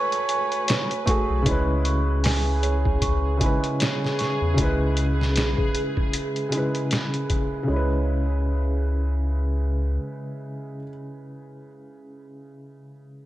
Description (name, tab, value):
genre	trip hop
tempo	77 BPM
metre	4/4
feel	swing 58% on 16ths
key	C# minor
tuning	A4 = 440 Hz
part	trumpet with cup mute	melody	0.0-1.1 s	C#5	-30 LUFS	right 1 dB	tape echo
part	felt-muted upright piano	accompaniment	0.0-13.3 s	C#3 to B4	-27 LUFS	equal	harmonic tremolo, tape echo
part	warm symphonic violin section	sustained chords	0.0-1.5 s	B4	-35 LUFS	equal	none
part	large celesta	arpeggios	0.0-13.3 s	C#5 to C#6	-31 LUFS	right 5 dB	ping-pong delay
part	trip hop sampler-style drum kit	drums	0.1-7.5 s	hi-hat, kick drum, snare drum	-25 LUFS	equal	studio reverb
part	warm sub bass	bass	1.3-10.0 s	G#1 to E2	-23 LUFS	equal	none
part	backwards swelling texture	texture	2.5-7.7 s	G#4	-34 LUFS	equal	built-in reverb
room	light reverb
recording	none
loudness	-21 LUFS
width	side -15 dB against mid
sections	0.0-1.5 A section; 1.5-7.7 B section; 7.7-10.8 C section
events	none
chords	0.0 F#madd9; 1.5 C#m7